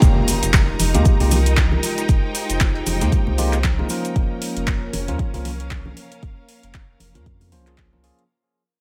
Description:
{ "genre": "deep house", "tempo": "116 BPM", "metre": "4/4", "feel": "swing 57% on 16ths", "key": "F minor", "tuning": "A4 = 443 Hz", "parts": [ { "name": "warbly tape-like pad", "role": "sustained chords", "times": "0.3-8.3 s", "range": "F3 to Db5", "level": "-33 LUFS", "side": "equal", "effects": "chorus, built-in reverb, sidechain pumping" }, { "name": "bell-like tine electric piano", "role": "stabs", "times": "0.0-8.2 s", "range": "F3 to C5", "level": "-28 LUFS", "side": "equal", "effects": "sidechain pumping, digital delay" }, { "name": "warm sub bass", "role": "bass", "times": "0.0-8.1 s", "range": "F1 to F2", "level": "-24 LUFS", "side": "equal", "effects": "sidechain pumping" }, { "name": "deep house drum kit", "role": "drums", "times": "0.0-8.3 s", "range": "handclaps, hi-hat", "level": "-28 LUFS", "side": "equal", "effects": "studio reverb" }, { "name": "dusty soul sampler-style drum kit", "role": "drums", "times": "0.0-4.0 s", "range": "hi-hat, shaker, snare drum", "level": "-36 LUFS", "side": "equal", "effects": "none" }, { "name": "electronic kick drum", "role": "drums", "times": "0.0-7.9 s", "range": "none", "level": "-20 LUFS", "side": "equal", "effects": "studio reverb" }, { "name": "cabasa", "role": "percussion", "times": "0.0-4.1 s", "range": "none", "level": "-33 LUFS", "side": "equal", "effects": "none" }, { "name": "impact", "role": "sound effects", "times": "0.0-2.1 s", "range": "none", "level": "-27 LUFS", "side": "equal", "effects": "none" }, { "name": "bright studio string section", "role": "texture", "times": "0.0-8.3 s", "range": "Ab3 to Bb5", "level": "-33 LUFS", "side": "equal", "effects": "sidechain pumping" }, { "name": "congas", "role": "percussion", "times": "0.8-8.0 s", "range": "none", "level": "-31 LUFS", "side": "equal", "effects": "none" } ], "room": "digital ambience", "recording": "none", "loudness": "-19 LUFS", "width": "mono", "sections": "0.0-8.3 A section", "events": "fade-out 0.0-8.3; impact 0.0-2.1", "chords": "0.0 Fm11", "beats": "| 0.02 0.54 1.05 1.57 | 2.09 2.61 3.12 3.64 | 4.16 4.67 5.19 5.71 | 6.23 6.74 7.26 7.78" }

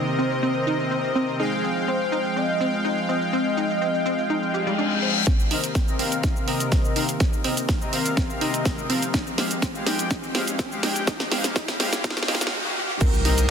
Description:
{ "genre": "progressive house", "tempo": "124 BPM", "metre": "4/4", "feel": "straight", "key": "unclear", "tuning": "A4 = 440 Hz", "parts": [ { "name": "warm velvety synth lead", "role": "melody", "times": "0.0-5.2, 13.0-13.4 s", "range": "Ab4 to Eb5", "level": "-28 LUFS", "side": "equal", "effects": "chorus, sidechain pumping, dub echo" }, { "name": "warm analog pad", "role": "sustained chords", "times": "0.0-13.5 s", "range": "Eb3 to G5", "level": "-32 LUFS", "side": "right 2 dB", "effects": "wide subtle chorus, sidechain pumping" }, { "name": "soft supersaw", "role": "stabs", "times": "0.0-13.3 s", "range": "C3 to G5", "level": "-27 LUFS", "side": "left 3 dB", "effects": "sidechain pumping, low-pass filter, ping-pong delay" }, { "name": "house drum kit", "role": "drums", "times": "0.1-13.5 s", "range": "cabasa, crash cymbal, hi-hat, snare drum", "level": "-26 LUFS", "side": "right 1 dB", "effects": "sidechain pumping on perc, low-pass filter on perc, low-pass filter on snare, sidechain pumping on hats, low-pass filter on hats, sidechain pumping on cymbals, low-pass filter on cymbals, low-pass filter on room" }, { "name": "wide unison pluck", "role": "arpeggios", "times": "0.2-13.3 s", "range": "G3 to C5", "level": "-29 LUFS", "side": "equal", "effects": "sidechain pumping, ping-pong delay" }, { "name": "reverse cymbal, riser and impact", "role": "sound effects", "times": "4.5-13.5 s", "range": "none", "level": "-31 LUFS", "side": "left 1 dB", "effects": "none" }, { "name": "electronic kick drum", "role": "drums", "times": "5.3-13.1 s", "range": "none", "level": "-23 LUFS", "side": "equal", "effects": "none" }, { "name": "round analog bass", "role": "bass", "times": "13.0-13.5 s", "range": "C2", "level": "-22 LUFS", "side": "equal", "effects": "sidechain pumping" } ], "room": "light reverb", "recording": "dense, heavily limited modern master, high-pass filter", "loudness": "-21 LUFS", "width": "side -7 dB against mid", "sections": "0.0-5.3 A section; 5.3-13.0 B section", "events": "reverse cymbal 4.5-5.3; build-up 5.3-13.0; drum fill 5.3-12.5; riser 5.3-13.0; filter sweep on supersaw synth 5.3-13.0; filter sweep on analog synth pad 5.3-13.0; filter sweep 5.3-13.0; stop 12.5-13.0; impact 13.0-13.5", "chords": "0.0 Cm7; 1.4 Fmadd9; 5.3 Cm7; 9.1 Fmadd9", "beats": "0.43 0.91 | 1.40 1.88 2.37 2.85 | 3.33 3.82 4.30 4.78 | 5.27 5.75 6.24 6.72 | 7.20 7.69 8.17 8.65 | 9.14 9.62 10.11 10.59 | 11.07 11.56 12.04 12.53 | 13.01 13.49" }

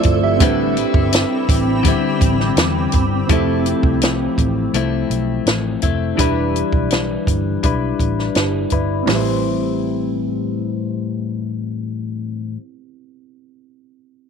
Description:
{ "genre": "indie pop, bedroom pop", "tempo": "83 BPM", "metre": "4/4", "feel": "straight", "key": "A minor", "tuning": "A4 = 440 Hz", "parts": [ { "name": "direct-recorded clean electric guitar", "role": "accompaniment", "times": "0.0-12.7 s", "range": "A2 to C5", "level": "-20 LUFS", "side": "left 10 dB", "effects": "wide subtle chorus, warbly pitch drift, low-pass filter" }, { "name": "reed electric piano", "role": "accompaniment", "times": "0.0-14.3 s", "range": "C4 to E5", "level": "-24 LUFS", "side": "right 14 dB", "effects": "cassette tape, low-pass filter" }, { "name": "granular cloud pad", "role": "sustained chords", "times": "0.0-3.3 s", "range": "C4 to E6", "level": "-24 LUFS", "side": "right 1 dB", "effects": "built-in reverb" }, { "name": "compact cocktail drum kit", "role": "drums", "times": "0.0-9.3 s", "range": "hi-hat, kick drum, snare drum, toms", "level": "-18 LUFS", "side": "right 1 dB", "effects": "none" }, { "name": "vintage muted picked electric bass", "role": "bass", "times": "0.1-12.1 s", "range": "E1 to E2", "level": "-22 LUFS", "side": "right 1 dB", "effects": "none" } ], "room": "light reverb, studio ambience", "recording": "1960s-style stereo with parts hard left and right", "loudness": "-16 LUFS", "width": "side -6 dB against mid", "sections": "0.0-3.3 A section; 3.3-9.1 B section; 9.1-12.0 C section", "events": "filter sweep 3.3-9.1", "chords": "0.4 Am11; 3.3 Fmaj7; 6.2 Em7; 9.1 Am7", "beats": "| 0.40 1.12 1.85 2.57 | 3.29 4.01 4.74 5.46 | 6.18 6.91 7.63 8.35 | 9.08 9.80 10.52 11.25" }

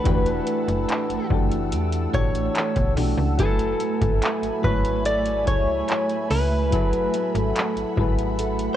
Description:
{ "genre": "contemporary R&B", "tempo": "72 BPM", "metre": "4/4", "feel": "straight", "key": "F# minor", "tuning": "A4 = 440 Hz", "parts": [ { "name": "direct-recorded clean electric guitar", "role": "melody", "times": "0.0-8.8 s", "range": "A4 to D5", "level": "-26 LUFS", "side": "equal", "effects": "cassette tape, analog delay" }, { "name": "soft electric-piano-like synth keys", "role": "accompaniment", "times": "0.0-8.8 s", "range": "E3 to G#5", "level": "-28 LUFS", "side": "left 9 dB", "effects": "chorus" }, { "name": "ethereal airy pad", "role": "sustained chords", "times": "0.0-8.8 s", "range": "A3 to E6", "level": "-29 LUFS", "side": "right 4 dB", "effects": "ensemble chorus, built-in reverb" }, { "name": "nylon-string guitar", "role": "arpeggios", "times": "0.0-8.8 s", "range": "E3 to A4", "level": "-33 LUFS", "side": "right 9 dB", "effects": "none" }, { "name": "slap-like FM bass", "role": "bass", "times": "0.1-8.7 s", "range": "E1 to E2", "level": "-26 LUFS", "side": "equal", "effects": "none" }, { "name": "booming analog drum machine", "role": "drums", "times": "0.1-8.8 s", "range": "handclaps, hi-hat, kick drum", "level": "-24 LUFS", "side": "equal", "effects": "cassette tape" } ], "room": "light reverb, digital ambience", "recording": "home recording on cassette", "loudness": "-20 LUFS", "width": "side -11 dB against mid", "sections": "0.0-8.8 A section", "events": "none", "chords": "0.0 Em11; 3.4 F#m11", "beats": "| 0.05 0.89 1.72 2.55 | 3.39 4.22 5.05 5.89 | 6.72 7.55 8.39" }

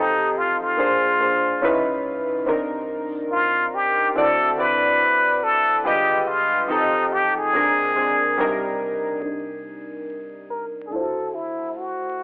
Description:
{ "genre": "lo-fi hip hop", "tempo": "71 BPM", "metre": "4/4", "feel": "swing 61% on 16ths", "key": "C minor", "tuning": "A4 = 441 Hz", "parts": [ { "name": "trumpet with plunger mute", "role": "melody", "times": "0.0-12.2 s", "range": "Eb4 to B4", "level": "-20 LUFS", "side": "left 1 dB", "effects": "low-pass filter, cassette tape, tape echo" }, { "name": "warm analog keys", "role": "accompaniment", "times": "0.0-12.2 s", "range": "Bb2 to Eb5", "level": "-23 LUFS", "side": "equal", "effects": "chorus, cassette tape, low-pass filter, plate reverb" }, { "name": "sub bass with octave", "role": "bass", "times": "0.0-9.2 s", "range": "F1 to D2", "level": "-49 LUFS", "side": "equal", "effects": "none" } ], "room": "moderate studio reverb, RT60 0.6 s", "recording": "home recording on cassette, vinyl crackle, telephone sound", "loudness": "-18 LUFS", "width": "side -28 dB against mid", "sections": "0.0-9.2 A section; 9.2-12.2 B section", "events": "filter sweep 9.2-12.2", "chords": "0.0 F7; 0.8 Bb7; 1.6 Dbm7; 2.5 Cm7; 4.2 D7; 5.8 G7b9b13; 6.7 F7; 7.5 Bb7; 8.4 Cm7; 10.9 D7", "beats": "0.77 1.62 | 2.46 3.31 4.16 5.00 | 5.84 6.69 7.54 8.38 | 9.22 10.07 10.91 11.76" }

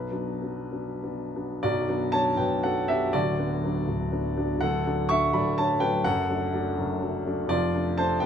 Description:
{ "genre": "classical, romantic character piece for solo piano", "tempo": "82 BPM (dotted quarters)", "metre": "6/8", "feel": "uneven beats, rubato", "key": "B minor", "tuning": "A4 = 441 Hz", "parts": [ { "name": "warm concert grand piano", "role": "solo", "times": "0.0-8.3 s", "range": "B0 to C#6", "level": "-24 LUFS", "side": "equal", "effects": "none" } ], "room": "moderate large studio reverb, RT60 0.9 s", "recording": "minimal, uncompressed stereo recording", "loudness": "-24 LUFS", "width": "side -8 dB against mid", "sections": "0.0-1.6 A section; 1.6-8.3 B section", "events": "none", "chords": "0.0 Bm; 3.1 Bm/D; 4.6 D; 6.0 D/F#; 7.5 Dm/F", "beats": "0.73 | 1.64 2.39 | 3.15 3.89 | 4.61 5.33 | 6.04 6.77 | 7.49 8.20" }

